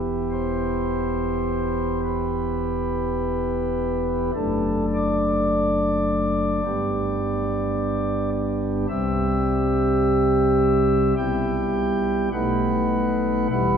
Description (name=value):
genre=classical, chorale-style piece for pipe organ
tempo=52 BPM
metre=4/4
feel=rubato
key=E minor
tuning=A4 = 443 Hz
part: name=pipe organ, flutes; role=solo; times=0.0-13.8 s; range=E1 to G5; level=-20 LUFS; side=equal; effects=none
room=wet church reverb, RT60 3.2 s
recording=minimal, uncompressed stereo recording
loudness=-20 LUFS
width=side -7 dB against mid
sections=0.0-13.8 A section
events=none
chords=0.0 Em; 4.3 D/F#; 6.7 G; 8.9 C; 11.2 Em/B; 12.3 B7